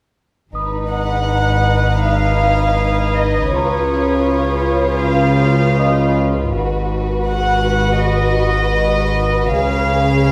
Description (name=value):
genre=cinematic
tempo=80 BPM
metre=4/4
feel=straight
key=G# dorian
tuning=A4 = 435 Hz
part: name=dark symphonic double bass section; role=bass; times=0.5-10.3 s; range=G#1 to C#2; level=-26 LUFS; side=equal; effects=none
part: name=rich symphonic cello section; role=bass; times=0.5-10.3 s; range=G#2 to C#3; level=-23 LUFS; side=equal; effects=none
part: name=saturated sub bass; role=drone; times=0.5-10.3 s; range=G#1 to C#2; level=-24 LUFS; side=equal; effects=none
part: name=dark studio violin section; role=texture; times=0.5-6.1 s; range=B5 to G#6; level=-31 LUFS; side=equal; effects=none
part: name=warm chamber violin section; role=second line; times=0.6-10.3 s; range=D#4 to B4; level=-22 LUFS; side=equal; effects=none
part: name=worn celesta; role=texture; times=0.6-9.6 s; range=D#5 to D#6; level=-28 LUFS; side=equal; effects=none
part: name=warm symphonic violin section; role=melody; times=0.9-10.3 s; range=C#5 to F#5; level=-21 LUFS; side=equal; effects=none
room=moderate scoring stage reverb, RT60 1.7 s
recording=none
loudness=-16 LUFS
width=mono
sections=0.5-10.3 A section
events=none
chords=0.5 G#m7; 3.5 C#7; 6.5 G#m7; 9.5 C#7